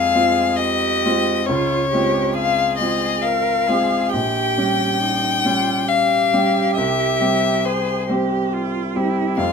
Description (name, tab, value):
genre	classical, slow romantic movement for piano trio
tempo	68 BPM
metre	3/4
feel	rubato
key	unclear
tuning	A4 = 437 Hz
part	clear violin	melody	0.0-9.5 s	C5 to G5	-19 LUFS	left 6 dB	none
part	clear cello	second line	0.0-9.5 s	Eb4 to Bb4	-24 LUFS	right 9 dB	none
part	warm baby grand piano	accompaniment	0.0-9.5 s	Bb1 to G4	-21 LUFS	right 1 dB	none
room	light reverb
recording	none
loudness	-16 LUFS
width	side -6 dB against mid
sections	0.0-9.5 A section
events	none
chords	0.0 Fm; 1.5 Dbmaj7; 4.1 Gdim/Bb; 6.8 C